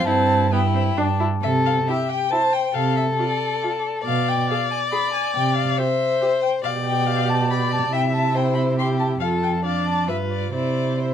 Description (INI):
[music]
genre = quick classical-period movement for string quartet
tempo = 138 BPM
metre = 3/4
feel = straight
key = C major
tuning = A4 = 440 Hz
[part]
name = warm violin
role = melody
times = 0.0-11.1 s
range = C5 to C6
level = -24 LUFS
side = left 3 dB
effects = none
[part]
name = rich violin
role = second line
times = 0.0-11.1 s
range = D4 to E5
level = -24 LUFS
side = left 4 dB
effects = none
[part]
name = warm viola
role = accompaniment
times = 0.0-11.1 s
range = B3 to G#4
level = -28 LUFS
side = right 2 dB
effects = none
[part]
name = warm cello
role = bass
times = 0.0-11.1 s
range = F2 to C3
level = -23 LUFS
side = right 4 dB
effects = none
[sound]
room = moderate studio reverb, RT60 0.8 s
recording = minimal, uncompressed stereo recording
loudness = -19 LUFS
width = side -9 dB against mid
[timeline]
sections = 0.0-1.4 A section; 1.4-11.1 B section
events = none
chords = 0.1 C/G; 1.0 G5; 1.4 C; 2.8 Dm7/C; 4.1 Bdim7; 5.3 C; 6.6 G/B; 7.9 C; 9.2 F; 9.6 Dm/F; 10.1 G7; 10.5 C